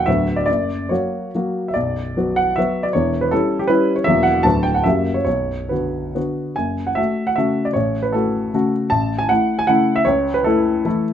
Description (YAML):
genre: classical, romantic triple-time dance for piano with dotted rhythms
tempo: 128-168 BPM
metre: 3/4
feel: rubato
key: B minor, F# minor from 6.6 s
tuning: A4 = 440 Hz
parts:
  - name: warm baby grand piano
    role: solo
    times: 0.0-11.1 s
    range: B0 to A5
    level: -16 LUFS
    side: equal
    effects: none
room: light reverb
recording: dark, warm production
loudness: -16 LUFS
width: side -9 dB against mid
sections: 0.0-6.6 A section; 6.6-11.1 B section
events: none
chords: 0.1 Bm/D; 0.5 F#; 1.7 Bm; 2.9 C#dim/E; 4.1 F#7/E; 4.4 Bm/D; 4.8 F#7b9; 5.3 Bm; 6.6 F#m; 7.8 F#m/A; 8.9 A; 10.1 A/C#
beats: 0.07 | 0.48 0.90 1.33 | 1.75 2.16 2.57 | 2.94 3.32 3.69 | 4.05 4.45 4.85 | 5.26 5.71 6.16 | 6.58 6.99 7.38 | 7.75 8.14 8.54 | 8.91 9.30 9.69 | 10.07 10.46 10.86